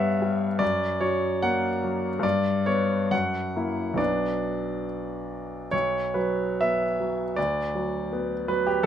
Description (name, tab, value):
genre	classical, romantic character piece for solo piano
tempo	65-83 BPM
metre	2/4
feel	rubato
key	B minor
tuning	A4 = 441 Hz
part	bright grand piano	solo	0.0-8.9 s	B1 to F#5	-24 LUFS	equal	none
room	light reverb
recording	close, detailed microphones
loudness	-24 LUFS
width	side -9 dB against mid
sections	0.0-5.7 A section; 5.7-8.9 A section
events	none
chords	0.0 Em/G; 0.6 F#; 2.2 G; 3.1 F#7; 4.0 Bm; 5.7 B5; 7.4 Bm/D